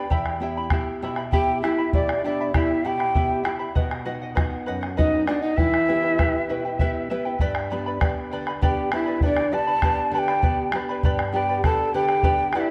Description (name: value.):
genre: andean folk, Andean ensemble.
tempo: 66 BPM (dotted quarters).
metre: 6/8.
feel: straight.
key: unclear.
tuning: A4 = 440 Hz.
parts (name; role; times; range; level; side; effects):
charango; accompaniment; 0.0-12.7 s; E4 to B5; -33 LUFS; equal; none.
nylon-string guitar; accompaniment; 0.0-12.7 s; E2 to E5; -32 LUFS; equal; none.
bombo; percussion; 0.1-12.7 s; none; -27 LUFS; equal; none.
breathy mellow quena; melody; 1.3-12.7 s; D5 to A5; -28 LUFS; equal; tape echo.
bright polished pan flute; second line; 1.3-12.7 s; D4 to D5; -29 LUFS; equal; none.
room: moderate scoring stage reverb, RT60 1.7 s.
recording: dark, warm production.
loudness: -23 LUFS.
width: mono.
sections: 0.0-7.4 A section; 7.4-12.7 A section.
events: nylon-string guitar fill 6.5-7.4.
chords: 0.1 Em; 3.8 B; 5.6 Em; 7.4 G.